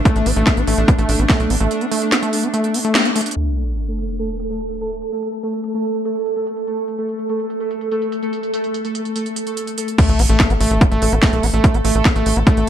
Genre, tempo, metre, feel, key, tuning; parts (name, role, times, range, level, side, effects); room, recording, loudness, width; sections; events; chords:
psychedelic trance; 145 BPM; 4/4; straight; A minor; A4 = 440 Hz
pulsing gated texture; sustained chords; 0.0-12.7 s; A3 to A4; -23 LUFS; right 1 dB; chorus, built-in reverb, sidechain pumping
overdriven acid bass; riff; 0.1-3.2, 10.0-12.7 s; A3 to C4; -20 LUFS; moving between left 5 dB and right 5 dB; distortion, auto-pan, sidechain pumping, dub echo
electronic kick drum; drums; 0.1-1.4, 10.0-12.6 s; -14 LUFS; equal
techno drum kit; drums; 0.1-12.7 s; crash cymbal, hi-hat, snare drum; -21 LUFS; equal; low-pass filter on hats, low-pass filter on snare, low-pass filter on cymbals, low-pass filter on room
tight sequencer bass; bass; 0.2-1.7, 10.1-12.6 s; A1 to B1; -18 LUFS; equal
sub drop; sound effects; 3.4-5.0, 10.0-11.6 s; -23 LUFS; equal
light reverb, digital ambience; low-pass filter; -16 LUFS; side -10 dB against mid
0.0-3.4 A section; 3.4-10.0 B section; 10.0-12.7 C section
break 1.7-3.4; band accent 3.0; drum fill 3.2; impact 3.4-5.0, 10.0-11.6; filter sweep on drum 3.4-10.0; filter sweep on synth texture 3.4-10.0; filter sweep 3.4-10.0; drop 10.0-12.7
0.0 Gsus2 (rootless); 3.4 N.C.; 10.0 A5